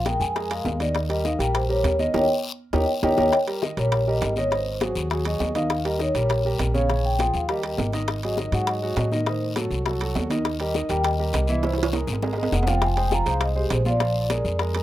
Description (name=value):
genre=Afro-Cuban jazz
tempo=202 BPM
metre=4/4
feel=straight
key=Eb mixolydian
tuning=A4 = 440 Hz
part: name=vibraphone with soft mallets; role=melody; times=0.0-14.6 s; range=G4 to Bb5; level=-25 LUFS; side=left 1 dB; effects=none
part: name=upright bass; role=bass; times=0.0-14.8 s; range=F1 to A2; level=-26 LUFS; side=equal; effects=none
part: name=warm concert grand piano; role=accompaniment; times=0.1-14.8 s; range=Db3 to F5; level=-28 LUFS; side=right 1 dB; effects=none
part: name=bongos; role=percussion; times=0.1-14.8 s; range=none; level=-30 LUFS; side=left 7 dB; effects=none
part: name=congas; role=percussion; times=0.1-14.8 s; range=none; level=-33 LUFS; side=right 1 dB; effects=none
part: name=guiro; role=percussion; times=0.1-14.8 s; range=none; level=-37 LUFS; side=left 6 dB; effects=none
part: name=timbales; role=percussion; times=0.1-14.8 s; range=none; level=-31 LUFS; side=right 6 dB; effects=none
room=moderate small room reverb, RT60 0.5 s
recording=rough home demo mix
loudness=-21 LUFS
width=side -14 dB against mid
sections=0.0-3.3 A section; 3.3-14.8 B section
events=band accent 2.1-3.3; drum fill 2.7-3.3, 11.6-12.8; vibraphone solo 3.3-14.8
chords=0.0 Bb5; 1.0 Eb7; 4.5 Ab7; 5.7 Eb7; 6.9 Bbm7; 7.5 Eb; 8.1 Ab5; 9.3 Adim7; 10.5 Eb; 11.6 Caug7; 12.8 Fm; 14.0 Bb7